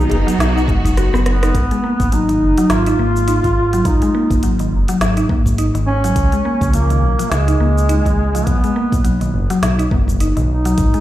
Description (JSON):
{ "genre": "organic downtempo", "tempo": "104 BPM", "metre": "4/4", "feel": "swing 57% on 16ths", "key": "G# dorian", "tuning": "A4 = 440 Hz", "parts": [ { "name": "warm duduk", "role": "melody", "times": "0.0-11.0 s", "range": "G#3 to E#4", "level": "-20 LUFS", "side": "equal", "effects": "ping-pong delay" }, { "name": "bright studio string section", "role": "sustained chords", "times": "0.0-1.6, 10.8-11.0 s", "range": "B2 to G#4", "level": "-24 LUFS", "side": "right 1 dB", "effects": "sidechain pumping" }, { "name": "mallet-like synth pluck", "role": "arpeggios", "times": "0.0-11.0 s", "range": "D#3 to F#4", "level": "-20 LUFS", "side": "equal", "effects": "chorus, ping-pong delay" }, { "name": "smooth gliding synth bass", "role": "bass", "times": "0.0-10.9 s", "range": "F#1 to C#2", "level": "-17 LUFS", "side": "equal", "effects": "none" }, { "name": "organic electronic drum kit", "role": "drums", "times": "0.0-11.0 s", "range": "cabasa, hi-hat, rim click, snare drum", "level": "-25 LUFS", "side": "equal", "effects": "none" }, { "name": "djembe", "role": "percussion", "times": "0.1-1.2 s", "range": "none", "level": "-26 LUFS", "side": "left 1 dB", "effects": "none" }, { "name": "electronic kick drum", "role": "drums", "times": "0.7-10.9 s", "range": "none", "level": "-18 LUFS", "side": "equal", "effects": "none" } ], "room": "moderate echo chamber reverb, RT60 2.3 s", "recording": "played on a big sound system in a bare room, large studio reverb", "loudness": "-13 LUFS", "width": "side -14 dB against mid", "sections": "0.0-1.5 A section; 1.5-11.0 B section", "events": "kick drops out 1.0-1.5; drum fill 1.0-1.5", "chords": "0.0 B; 1.5 G#7(no3); 6.2 C#; 8.5 G#m7" }